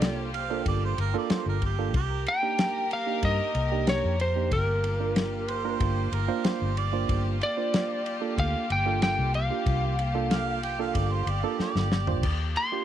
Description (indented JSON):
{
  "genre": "straight-eighth soul blues",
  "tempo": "93 BPM",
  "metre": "4/4",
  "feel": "straight",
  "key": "G minor",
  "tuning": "A4 = 439 Hz",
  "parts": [
    { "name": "lightly driven lead guitar", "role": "melody", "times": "0.0-12.8 s", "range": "Bb4 to C6", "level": "-29 LUFS", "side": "left 1 dB", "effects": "none" },
    { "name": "barky reed electric piano", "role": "accompaniment", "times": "0.0-12.8 s", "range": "Bb3 to C5", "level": "-32 LUFS", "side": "right 11 dB", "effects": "overdrive" },
    { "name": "warm studio string section", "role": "sustained chords", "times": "0.0-12.8 s", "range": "Bb3 to Bb4", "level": "-35 LUFS", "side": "left 3 dB", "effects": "none" },
    { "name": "vintage muted fingered electric bass", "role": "bass", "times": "0.0-12.5 s", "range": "G1 to G2", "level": "-28 LUFS", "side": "left 1 dB", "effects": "none" },
    { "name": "warm soul drum kit", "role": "drums", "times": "0.0-12.7 s", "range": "crash cymbal, kick drum, ride cymbal, snare drum, toms", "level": "-30 LUFS", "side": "left 1 dB", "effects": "none" },
    { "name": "clear harmonica", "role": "second line", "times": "0.3-12.4 s", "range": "G4 to G5", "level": "-34 LUFS", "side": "right 12 dB", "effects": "overdrive" }
  ],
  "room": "small room ambience",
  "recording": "1960s-style stereo",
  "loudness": "-24 LUFS",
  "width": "side -11 dB against mid",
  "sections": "0.0-12.8 A section",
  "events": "drum fill 11.6-12.2",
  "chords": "0.0 Gm7; 1.9 Cm7; 4.5 Gm7; 12.2 Ebmaj7",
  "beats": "0.01 0.65 1.30 | 1.94 2.58 3.23 3.87 | 4.51 5.16 5.80 6.44 | 7.09 7.73 8.37 9.02 | 9.66 10.30 10.95 11.59 | 12.24"
}